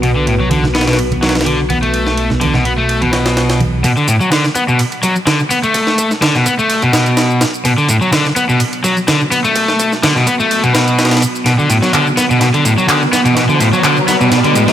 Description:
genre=breakbeat, breaks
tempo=126 BPM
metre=4/4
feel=swing 53% on 16ths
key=B minor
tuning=A4 = 440 Hz
part: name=dark analog pad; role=sustained chords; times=0.0-14.7 s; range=B3 to D5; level=-22 LUFS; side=right 1 dB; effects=chorus, sidechain pumping
part: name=cranked stack guitar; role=riff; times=0.0-14.7 s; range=A2 to B3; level=-12 LUFS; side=equal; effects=overdrive, vintage 12-bit sampler grit, low-pass filter, tape echo
part: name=detuned saw bass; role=bass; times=0.0-3.8 s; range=B1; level=-20 LUFS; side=equal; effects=none
part: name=breakbeat sampler-style drum kit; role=drums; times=0.0-14.7 s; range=kick drum, ride cymbal, snare drum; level=-19 LUFS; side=right 1 dB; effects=high-pass filter on cymbals, high-pass filter on snare, high-pass filter on kick
part: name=congas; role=percussion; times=0.4-3.7 s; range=none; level=-21 LUFS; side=right 3 dB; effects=none
part: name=electronic shaker and handclaps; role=drums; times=3.8-14.7 s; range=none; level=-21 LUFS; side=equal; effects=high-pass filter on perc, high-pass filter on snare, high-pass filter on room
part: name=riser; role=sound effects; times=12.1-14.7 s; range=none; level=-18 LUFS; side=equal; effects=none
room=light reverb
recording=none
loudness=-10 LUFS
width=side -10 dB against mid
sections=0.0-3.8 A section; 3.8-14.7 B section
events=build-up 3.8-14.7; filter sweep on analog synth pad 3.8-14.7; drum fill 11.5-14.7; riser 12.1-14.7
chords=0.0 B5; 3.8 Bm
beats=| 0.03 0.51 0.99 1.46 | 1.94 2.42 2.89 3.37 | 3.84 4.32 4.80 5.27 | 5.75 6.22 6.70 7.18 | 7.65 8.13 8.61 9.08 | 9.56 10.03 10.51 10.99 | 11.46 11.94 12.41 12.89 | 13.37 13.84 14.32

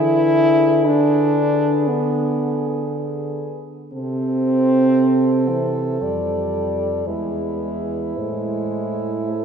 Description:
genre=classical, lyrical piece for horn quartet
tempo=53-60 BPM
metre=4/4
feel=rubato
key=A minor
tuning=A4 = 440 Hz
part: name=warm French horn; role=melody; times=0.0-9.4 s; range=B4 to D5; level=-28 LUFS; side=left 6 dB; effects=none
part: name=clear French horn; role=second line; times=0.0-9.4 s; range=E4 to A4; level=-26 LUFS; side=right 5 dB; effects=none
part: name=mellow French horn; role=accompaniment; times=0.0-9.4 s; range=E3 to E4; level=-19 LUFS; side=equal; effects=none
part: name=dark French horn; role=bass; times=0.0-9.4 s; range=E2 to D3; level=-24 LUFS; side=right 1 dB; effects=none
room=wet church reverb, RT60 3.4 s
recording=minimal, uncompressed stereo recording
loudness=-17 LUFS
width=side -7 dB against mid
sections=0.0-9.4 A section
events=none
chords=0.0 E7/D; 3.9 Am/C; 6.0 Dm/F; 7.1 E; 8.2 Am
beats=0.87 1.88 2.91 | 3.93 4.96 6.01 7.07 | 8.17 9.28

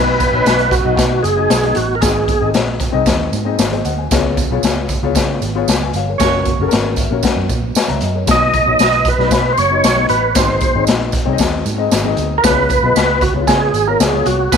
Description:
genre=uptempo 1960s-style soul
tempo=115 BPM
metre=4/4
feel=straight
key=B major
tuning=A4 = 442 Hz
part: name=percussive tonewheel organ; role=melody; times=0.0-2.5, 8.3-14.6 s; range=F#4 to D#5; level=-15 LUFS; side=right 2 dB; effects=chorus vibrato, slow rotary speaker
part: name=dark upright piano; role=accompaniment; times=0.0-14.6 s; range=G#2 to A#5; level=-21 LUFS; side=left 9 dB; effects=none
part: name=vintage muted fingered electric bass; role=bass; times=0.0-14.6 s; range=F#1 to C#3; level=-21 LUFS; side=right 2 dB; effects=none
part: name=raw garage drum kit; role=drums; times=0.2-14.6 s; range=hi-hat, kick drum, snare drum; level=-17 LUFS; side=left 2 dB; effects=none
part: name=congas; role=percussion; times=0.2-14.6 s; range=none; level=-31 LUFS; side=right 12 dB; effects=none
part: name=tambourine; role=percussion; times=0.2-14.6 s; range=none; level=-26 LUFS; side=right 18 dB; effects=none
part: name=warm horn section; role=second line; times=6.2-6.6, 14.5-14.6 s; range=F#3 to C#5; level=-20 LUFS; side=right 11 dB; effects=none
room=moderate plate reverb, RT60 2.6 s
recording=1960s-style stereo with parts hard left and right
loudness=-12 LUFS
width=side -7 dB against mid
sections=0.0-14.6 A section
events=band accent 6.2-8.3; upright piano fill 6.7-8.3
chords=0.0 B; 2.0 G#; 4.1 C#7; 6.2 F#; 8.3 B; 10.4 G#; 12.4 C#7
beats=0.46 0.98 1.50 | 2.02 2.55 3.07 3.59 | 4.11 4.63 5.15 5.67 | 6.19 6.71 7.24 7.75 | 8.28 8.80 9.32 9.84 | 10.36 10.88 11.40 11.92 | 12.44 12.96 13.48 14.00 | 14.52

